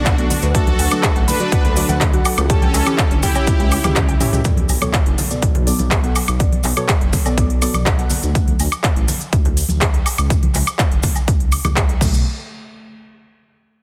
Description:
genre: progressive house.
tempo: 123 BPM.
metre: 4/4.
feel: straight.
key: B minor.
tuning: A4 = 441 Hz.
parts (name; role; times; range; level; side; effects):
soft supersaw; melody; 0.0-4.4 s; C#4 to B4; -27 LUFS; equal; sidechain pumping, dub echo.
soft synth bell; second line; 0.0-4.4 s; F#5 to B5; -33 LUFS; equal; none.
airy breathy pad; sustained chords; 0.0-4.4 s; C#3 to A4; -32 LUFS; equal; none.
dark detuned saw bass; bass; 0.0-12.2 s; F#1 to D2; -23 LUFS; equal; tube saturation, sidechain pumping.
soft round pluck; arpeggios; 0.1-4.4, 12.0-12.2 s; A3 to G5; -30 LUFS; equal; lush chorus, vintage 12-bit sampler grit, sidechain pumping, digital delay.
big-room dance drum kit; drums; 0.1-12.1 s; crash cymbal, handclaps, hi-hat, toms, woodblock; -24 LUFS; equal; overdrive.
electronic kick drum; drums; 0.1-12.1 s; none; -19 LUFS; equal; overdrive.
cabasa; percussion; 0.1-12.2 s; none; -31 LUFS; equal; none.
deep mellow chord stab; stabs; 0.2-8.2 s; B2 to F#5; -28 LUFS; equal; lush chorus, cassette tape, sidechain pumping, digital delay.
congas and woodblock; percussion; 0.3-12.1 s; none; -30 LUFS; equal; sidechain pumping on perc.
impact; sound effects; 4.4-6.4 s; none; -30 LUFS; equal; none.
room: light reverb.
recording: dense, heavily limited modern master.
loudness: -17 LUFS.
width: mono.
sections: 0.0-4.4 A section; 4.4-12.3 B section; 12.3-13.8 C section.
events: drop 0.0-4.4; drum fill 3.5-4.4; impact 4.4-6.4; filter sweep on detuned saw bass 4.4-12.3.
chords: 0.0 Bm7; 0.5 D; 2.5 C#dim; 4.4 Bm7; 8.4 D5; 10.3 N.C.; 12.0 Asus2/B; 12.3 N.C..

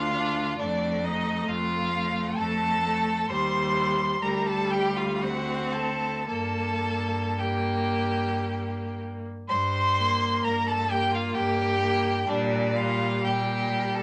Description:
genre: classical, slow romantic movement for string quartet.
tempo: 53-68 BPM.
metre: 3/4.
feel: rubato.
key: G minor.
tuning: A4 = 440 Hz.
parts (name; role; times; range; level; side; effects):
rich violin; melody; 0.0-14.0 s; D5 to C6; -31 LUFS; equal; none.
clear violin; second line; 0.0-14.0 s; D4 to C5; -33 LUFS; equal; none.
rich viola; accompaniment; 0.0-14.0 s; G3 to D4; -32 LUFS; equal; none.
rich cello; bass; 0.0-14.0 s; D2 to Bb2; -33 LUFS; equal; none.
room: moderate studio ambience, RT60 0.5 s.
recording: none.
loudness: -26 LUFS.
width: mono.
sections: 0.0-9.5 A section; 9.5-14.0 A section.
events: none.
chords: 0.0 Bb/D (rootless); 0.6 F7; 3.3 Eb; 4.2 G5/D; 5.2 D7; 6.3 Gm; 12.3 Gm/Bb.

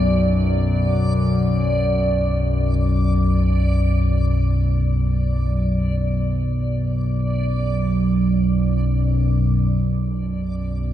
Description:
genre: dark ambient drone.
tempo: free time.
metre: none.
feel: none.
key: B minor.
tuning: A4 = 440 Hz.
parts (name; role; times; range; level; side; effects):
analog drone; drone; 0.0-10.9 s; B1 to F#2; -18 LUFS; equal; chorus.
backwards swelling texture; texture; 0.0-9.5 s; D5; -28 LUFS; right 1 dB; built-in reverb.
warm baby grand piano; arpeggios; 10.1-10.9 s; B2; -43 LUFS; right 1 dB; none.
room: wet cathedral reverb, RT60 7.1 s.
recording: dark, warm production.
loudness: -17 LUFS.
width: side -12 dB against mid.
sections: 0.0-9.5 A section; 9.5-10.9 B section.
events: none.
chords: 0.0 Bm.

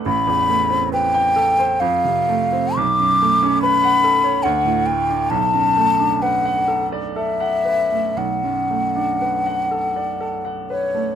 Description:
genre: classical, impressionist duo for flute and grand piano.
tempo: 56-74 BPM.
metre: 3/4.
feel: rubato.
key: unclear.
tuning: A4 = 445 Hz.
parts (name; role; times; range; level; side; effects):
clear baby grand piano; accompaniment; 0.0-11.2 s; A1 to G5; -22 LUFS; right 6 dB; none.
mellow hollow concert flute; melody; 0.1-11.2 s; C#5 to D6; -17 LUFS; left 2 dB; none.
room: little or no reverb.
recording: close, detailed microphones.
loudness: -16 LUFS.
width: side -9 dB against mid.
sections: 0.0-11.2 A section.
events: none.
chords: 0.1 Am9; 1.8 F; 2.8 Bm9; 4.4 D; 5.3 Bm7.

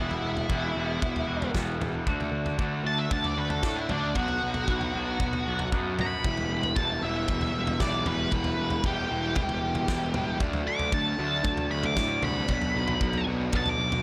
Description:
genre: quiet-loud alternative rock.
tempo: 115 BPM.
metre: 4/4.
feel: straight.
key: E minor.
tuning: A4 = 437 Hz.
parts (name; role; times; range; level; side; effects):
octave-fuzz lead guitar; melody; 0.0-14.0 s; D4 to D6; -33 LUFS; equal; distortion, slapback echo.
twangy electric guitar; arpeggios; 0.0-6.2 s; E2 to F#4; -38 LUFS; equal; subtle chorus.
overdriven electric guitar; riff; 0.0-14.0 s; E2 to D4; -35 LUFS; equal; spring reverb.
fuzz picked electric bass; bass; 0.0-14.0 s; E1 to A2; -35 LUFS; equal; overdrive.
loose indie drum kit; drums; 0.1-14.0 s; kick drum, snare drum, toms; -34 LUFS; equal; none.
overdriven electric guitar; riff; 6.2-14.0 s; B2 to E4; -37 LUFS; equal; none.
room: little or no reverb.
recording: none.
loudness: -28 LUFS.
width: mono.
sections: 0.0-14.0 A section.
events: lead electric guitar solo 0.0-14.0.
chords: 0.0 Emadd9; 2.1 D; 4.2 Bm; 6.2 Em; 10.4 D; 12.5 Bm.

